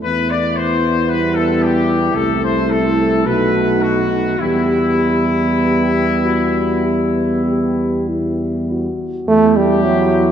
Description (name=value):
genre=classical, hymn-like piece for brass band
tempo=48-59 BPM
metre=4/4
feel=rubato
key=E minor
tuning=A4 = 440 Hz
part: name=clear trumpet section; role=melody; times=0.0-10.3 s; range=E4 to D5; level=-20 LUFS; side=left 5 dB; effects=none
part: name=warm trombone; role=accompaniment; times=0.0-10.3 s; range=F#3 to A3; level=-19 LUFS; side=right 2 dB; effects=none
part: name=dark tuba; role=bass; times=0.0-10.3 s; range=B1 to E2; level=-20 LUFS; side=equal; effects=none
part: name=mellow French horn section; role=second line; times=0.1-10.3 s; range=B3 to E4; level=-21 LUFS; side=right 3 dB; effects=none
part: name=warm euphonium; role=accompaniment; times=0.1-10.3 s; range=B3 to G4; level=-22 LUFS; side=left 2 dB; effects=none
room=wet church reverb, RT60 2.8 s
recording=dark, warm production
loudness=-14 LUFS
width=side -9 dB against mid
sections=0.0-9.3 A section; 9.3-10.3 B section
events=none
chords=0.1 Em; 2.2 Am/C; 3.3 B7; 4.4 Em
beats=| 0.06 1.10 2.17 3.26 | 4.41 5.63 6.85 8.07 | 9.27